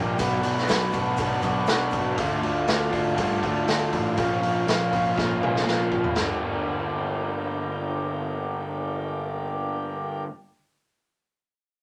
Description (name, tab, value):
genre	psychedelic rock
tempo	121 BPM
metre	4/4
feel	straight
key	G dorian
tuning	A4 = 442 Hz
part	pedal harmonium	sustained chords	0.0-10.2 s	F4 to G5	-33 LUFS	equal	none
part	raw garage guitar	riff	0.0-10.3 s	G2 to G4	-29 LUFS	equal	overdrive
part	fuzz picked electric bass	bass	0.0-10.2 s	G1 to G2	-33 LUFS	equal	overdrive
part	raw garage drum kit	drums	0.2-6.3 s	hi-hat, kick drum, snare drum, toms	-30 LUFS	equal	none
part	tube shaker	percussion	0.2-2.0 s	none	-53 LUFS	equal	none
room	moderate club reverb, RT60 0.6 s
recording	none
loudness	-25 LUFS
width	mono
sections	0.0-6.2 A section; 6.2-10.1 B section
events	drum fill 5.2-6.2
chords	0.2 Bm7; 2.2 Dmadd9; 4.2 Bbm; 6.2 Gm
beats	| 0.20 0.69 1.19 1.69 | 2.18 2.68 3.18 3.67 | 4.17 4.67 5.16 5.66 | 6.16 6.66 7.15 7.65 | 8.15 8.65 9.14 9.64